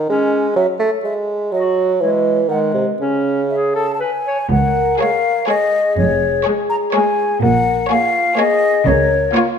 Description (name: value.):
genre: cinematic, playful, whimsical film cue.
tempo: 124 BPM.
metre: 3/4.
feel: straight.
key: C# minor, Db major from 4.5 s.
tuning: A4 = 440 Hz.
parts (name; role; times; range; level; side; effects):
dark bassoon; accompaniment; 0.0-4.0 s; B#2 to A3; -16 LUFS; right 3 dB; none.
mellow clarinet; second line; 0.1-4.4 s; G#3 to C#5; -21 LUFS; left 1 dB; none.
mellow hollow silver concert flute; second line; 0.6-9.4 s; C#5 to Bb5; -18 LUFS; left 3 dB; none.
mellow French horn section; sustained chords; 4.5-9.6 s; F4 to Bb4; -21 LUFS; left 4 dB; none.
warm studio cello section; bass; 4.5-9.3 s; Db2 to Db3; -20 LUFS; right 3 dB; none.
warm studio double bass section; bass; 4.5-9.2 s; F1 to Db2; -22 LUFS; right 3 dB; none.
rich studio violin section; melody; 5.0-9.6 s; Db5; -24 LUFS; left 3 dB; none.
warm studio violin section; second line; 5.0-9.6 s; F4 to Ab4; -24 LUFS; left 4 dB; none.
warm studio viola section; accompaniment; 5.0-9.6 s; Ab3 to Bb3; -23 LUFS; right 2 dB; none.
room: moderate scoring stage reverb, RT60 1.6 s.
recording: none.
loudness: -14 LUFS.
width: side -7 dB against mid.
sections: 0.0-4.5 A section; 4.5-9.6 B section.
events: none.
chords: 0.1 C#5; 1.5 N.C.; 2.0 C#m/E (rootless); 2.5 G#/D#; 3.0 C#5; 4.5 Db; 6.0 Db/F; 7.4 Bbm7; 8.9 Bbm/Db.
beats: | 0.09 0.57 1.05 | 1.53 2.02 2.50 | 3.00 3.51 4.01 | 4.50 5.00 5.48 | 5.97 6.45 6.94 | 7.42 7.91 8.39 | 8.87 9.35.